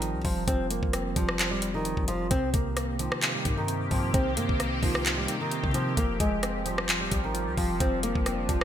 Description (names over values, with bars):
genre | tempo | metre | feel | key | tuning
hip hop, trap | 131 BPM | 4/4 | half-time | unclear | A4 = 440 Hz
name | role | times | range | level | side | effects
nylon-string guitar | melody | 0.0-8.6 s | Eb3 to C4 | -31 LUFS | left 1 dB | digital delay
tine electric piano | accompaniment | 0.0-8.6 s | C3 to F4 | -33 LUFS | right 2 dB | medium stereo tremolo
clean 808-style bass | bass | 0.0-8.6 s | F1 to C3 | -34 LUFS | equal | none
trap drum kit | drums | 0.0-8.6 s | handclaps, hi-hat, kick drum, rim click | -28 LUFS | equal | gated reverb
sweeping resonant pad | sustained chords | 2.3-8.6 s | Eb3 to G4 | -35 LUFS | left 1 dB | chorus
room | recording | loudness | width
light reverb, digital ambience | bright 1980s-style digital production | -25 LUFS | side -10 dB against mid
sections
0.0-8.6 A section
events
none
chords
0.0 Fsus2; 2.3 Cm7; 6.0 Fmadd9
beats
0.02 | 0.48 0.93 1.39 1.85 | 2.31 2.77 3.22 3.68 | 4.14 4.60 5.06 5.51 | 5.97 6.43 6.89 7.35 | 7.80 8.26